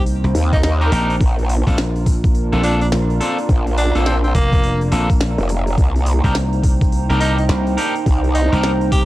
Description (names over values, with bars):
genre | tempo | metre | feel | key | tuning
glitch hop | 105 BPM | 4/4 | swing 62% on 16ths | C minor | A4 = 440 Hz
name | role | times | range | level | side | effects
raspy tenor saxophone | melody | 0.0-9.0 s | Bb3 to G4 | -23 LUFS | equal | analog delay
dark analog pad | sustained chords | 0.0-9.1 s | Bb3 to C5 | -28 LUFS | right 2 dB | chorus, sidechain pumping
dry thumbed slap bass | bass | 0.0-9.1 s | F1 to C2 | -18 LUFS | equal | none
downlifter | sound effects | 0.0-1.2 s | none | barely audible | none | none
warbly tape-like pad | texture | 0.0-9.1 s | Eb4 to Bb5 | -26 LUFS | right 2 dB | chorus, built-in reverb, sidechain pumping
glitchy drum kit | drums | 0.1-9.1 s | hi-hat, rim click, snare drum | -28 LUFS | equal | none
growl bass | bass | 0.3-8.5 s | F1 to Eb2 | -16 LUFS | equal | chorus
electronic kick drum | drums | 0.5-9.1 s | none | -16 LUFS | equal | overdrive
electric guitar at the edge of break-up | stabs | 0.8-8.7 s | C4 to Bb4 | -23 LUFS | left 1 dB | sidechain pumping, analog delay
room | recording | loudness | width
little or no reverb | dry, gritty hardware recording, cassette tape | -14 LUFS | side -16 dB against mid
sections
0.0-9.1 A section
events
none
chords
0.0 Cm7; 1.2 Bbmaj7; 5.8 Cm7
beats
0.06 0.64 | 1.21 1.78 2.35 2.92 | 3.49 4.06 4.63 5.21 | 5.78 6.35 6.92 7.49 | 8.06 8.63